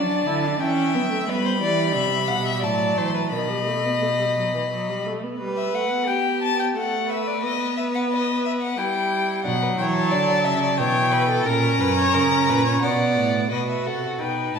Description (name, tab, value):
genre	classical, baroque-style fugue for string quartet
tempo	89 BPM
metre	3/4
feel	straight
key	unclear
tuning	A4 = 438 Hz
part	dark violin	melody	0.0-14.6 s	D5 to B5	-25 LUFS	left 5 dB	none
part	rich violin	second line	0.0-14.6 s	D4 to F#5	-25 LUFS	left 1 dB	none
part	warm viola	accompaniment	0.0-14.6 s	D#3 to F#4	-26 LUFS	right 3 dB	none
part	rich cello	bass	0.0-5.1, 9.4-14.6 s	F#2 to G3	-26 LUFS	right 3 dB	none
room	wet recital hall reverb, RT60 1.6 s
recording	recorded in a church or concert hall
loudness	-20 LUFS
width	side -6 dB against mid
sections	0.0-5.4 A section; 5.4-13.5 B section; 13.5-14.6 A section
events	none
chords	0.0 Bm (rootless); 0.6 C#m7b5/E; 1.3 Em; 2.6 F#dim/A; 3.3 B; 5.4 Em/G (rootless); 6.8 D69/A; 7.4 B; 8.8 Em/G; 9.5 Bm; 10.8 C#m7b5/B; 11.5 F#; 12.8 Bm; 13.5 B7